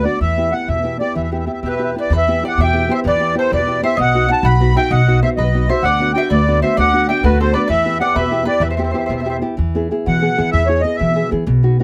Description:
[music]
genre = italian folk, Italian serenade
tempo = 128 BPM (dotted quarters)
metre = 6/8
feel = rubato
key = E minor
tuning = A4 = 441 Hz
[part]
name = accordion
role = melody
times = 0.0-11.3 s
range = B4 to B5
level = -20 LUFS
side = equal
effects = light tremolo tuning
[part]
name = nylon-string guitar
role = accompaniment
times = 0.0-11.8 s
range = B2 to G#4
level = -23 LUFS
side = equal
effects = none
[part]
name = upright bass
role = bass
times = 0.0-11.8 s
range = B1 to E3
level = -20 LUFS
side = equal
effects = none
[part]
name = mandolin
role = second line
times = 1.7-9.4 s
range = F#4 to F#5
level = -25 LUFS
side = equal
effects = none
[sound]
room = little or no reverb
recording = close, detailed microphones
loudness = -16 LUFS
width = mono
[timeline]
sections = 0.0-2.1 A section; 2.1-9.6 A section; 9.6-11.8 B section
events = none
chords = 0.2 Em; 4.0 B; 5.8 D6; 7.7 Em; 9.6 E

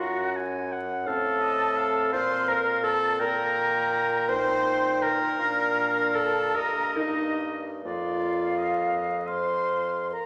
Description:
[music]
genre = classical, slow romantic movement for wind quintet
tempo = 41-57 BPM (dotted quarters)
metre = 6/8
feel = rubato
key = Bb major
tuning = A4 = 439 Hz
[part]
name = concert flute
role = melody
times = 0.0-10.3 s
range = Eb5 to C6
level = -32 LUFS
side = equal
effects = none
[part]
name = clear oboe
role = second line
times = 0.0-10.2 s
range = D5 to Bb5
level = -33 LUFS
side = equal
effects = none
[part]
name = mellow French horn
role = accompaniment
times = 0.0-10.3 s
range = Bb3 to C5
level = -38 LUFS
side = equal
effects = none
[part]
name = warm clarinet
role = accompaniment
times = 0.0-9.2 s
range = Eb4 to C5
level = -30 LUFS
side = equal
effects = none
[part]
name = warm bassoon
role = bass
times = 0.0-10.1 s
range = F2 to Bb2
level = -35 LUFS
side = equal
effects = none
[sound]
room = wet recital hall reverb, RT60 1.9 s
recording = vinyl crackle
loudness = -26 LUFS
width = mono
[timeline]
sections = 0.0-10.3 A section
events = none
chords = 0.0 Gb; 1.1 F/A; 2.1 Bb5; 3.2 Eb/Bb; 5.4 Bb; 6.6 Eb/G; 7.9 Bb/F; 9.3 F5

